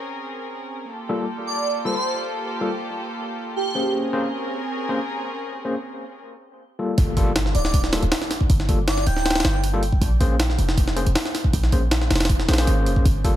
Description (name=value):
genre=drum and bass, jungle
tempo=158 BPM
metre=4/4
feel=straight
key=unclear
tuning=A4 = 438 Hz
part: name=warm studio string section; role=sustained chords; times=0.0-6.2 s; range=Bb3 to Bb4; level=-29 LUFS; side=equal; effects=none
part: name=overdriven tine electric piano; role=stabs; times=1.1-13.4 s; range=G3 to C5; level=-27 LUFS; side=left 2 dB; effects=fast tremolo, dub echo
part: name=airy dreamy lead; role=melody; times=1.5-3.9, 7.5-9.6 s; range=G4 to G5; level=-28 LUFS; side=right 2 dB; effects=chorus, dub echo
part: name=warm 808-style bass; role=bass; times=7.0-13.4 s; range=D1 to Db2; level=-21 LUFS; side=equal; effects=none
part: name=jungle sampler-style drum kit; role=drums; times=7.0-13.3 s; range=hi-hat, kick drum, snare drum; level=-21 LUFS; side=equal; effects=none
part: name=impact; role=sound effects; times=7.0-8.5 s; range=none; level=-31 LUFS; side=equal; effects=none
room=little or no reverb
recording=none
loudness=-19 LUFS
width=side -13 dB against mid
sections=0.0-7.0 A section; 7.0-13.4 B section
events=drop 7.0-13.4; impact 7.0-8.5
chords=0.0 Bbm9; 7.0 Gm9; 10.0 Bbm9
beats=0.14 0.52 | 0.90 1.28 1.66 2.04 | 2.42 2.80 3.18 3.56 | 3.94 4.32 4.70 5.08 | 5.46 5.84 6.22 6.60 | 6.98 7.36 7.74 8.12 | 8.50 8.88 9.26 9.64 | 10.02 10.40 10.78 11.16 | 11.54 11.92 12.29 12.68 | 13.05